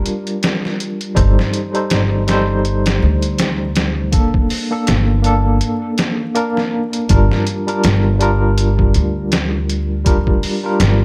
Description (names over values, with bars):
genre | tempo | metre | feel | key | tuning
trip hop | 81 BPM | 4/4 | swing 57% on 16ths | G minor | A4 = 440 Hz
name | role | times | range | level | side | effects
tine electric piano | accompaniment | 0.0-11.0 s | G3 to C5 | -21 LUFS | equal | tremolo, tape echo
trip hop sampler-style drum kit | drums | 0.1-11.0 s | hi-hat, kick drum, snare drum | -20 LUFS | equal | overdrive
upright bass | bass | 1.2-11.0 s | G1 to D2 | -18 LUFS | equal | none
room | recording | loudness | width
little or no reverb | vinyl crackle | -16 LUFS | mono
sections
0.0-7.1 A section; 7.1-11.0 B section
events
break 5.6-7.1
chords
0.0 Gm7; 1.2 Cm69/G; 4.1 Bbmaj7/G; 7.1 Gm7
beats
0.43 | 1.17 1.91 2.65 3.39 | 4.13 4.87 5.62 6.36 | 7.10 7.84 8.58 9.32 | 10.06 10.80